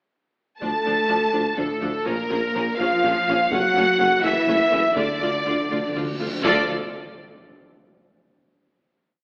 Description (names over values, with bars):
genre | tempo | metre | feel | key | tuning
cinematic, epic orchestral film score | 124 BPM | 3/4 | straight | D harmonic minor | A4 = 440 Hz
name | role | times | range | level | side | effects
warm symphonic violin section | melody | 0.6-6.7 s | A4 to A5 | -30 LUFS | equal | none
warm symphonic violin section | second line | 0.6-6.7 s | A4 to A5 | -29 LUFS | equal | none
warm symphonic viola section | accompaniment | 0.6-6.7 s | F3 to A4 | -31 LUFS | equal | none
dark French horn section | sustained chords | 0.6-6.6 s | A3 to A4 | -29 LUFS | equal | none
bright trumpet section | stabs | 0.6-6.6 s | A4 to A5 | -27 LUFS | equal | none
mellow tuba | bass | 0.6-6.6 s | F#1 to D2 | -34 LUFS | equal | none
rich studio double bass section | bass | 0.6-6.7 s | F#1 to D2 | -38 LUFS | equal | none
warm symphonic cello section | bass | 0.6-6.7 s | A2 to A3 | -33 LUFS | equal | none
taiko ensemble | drums | 0.6-5.4 s | none | -37 LUFS | equal | none
timpani | percussion | 5.0-6.7 s | D3 | -37 LUFS | equal | none
reverse cymbal and impact | sound effects | 5.9-7.9 s | none | -41 LUFS | equal | none
room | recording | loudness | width
wet scoring stage reverb, RT60 1.7 s | AM radio sound | -21 LUFS | mono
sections
0.6-6.4 theme; 6.4-7.9 final chord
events
timpani fill 5.0-6.4; reverse cymbal 5.9-6.4; impact 6.4-7.9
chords
0.6 Dm; 2.1 Bbm; 3.5 F#m; 5.0 Dm